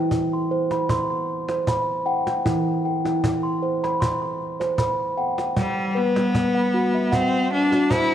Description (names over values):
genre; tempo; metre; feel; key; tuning
world meditative, meditative tuned percussion; 77 BPM; 4/4; straight; E hirajoshi; A4 = 436 Hz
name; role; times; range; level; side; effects
steel tongue drum; arpeggios; 0.0-8.1 s; E3 to C6; -22 LUFS; right 1 dB; none
cajon; percussion; 0.1-8.1 s; none; -28 LUFS; equal; none
bright cello; melody; 5.6-8.1 s; G3 to E4; -21 LUFS; left 2 dB; none
room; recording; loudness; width
wet concert hall reverb, RT60 2.2 s; cassette tape; -20 LUFS; side -10 dB against mid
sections
0.0-8.1 A section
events
none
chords
0.0 Em; 5.6 G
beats
0.12 0.90 1.68 | 2.46 3.24 4.02 4.80 | 5.58 6.36 7.13 7.92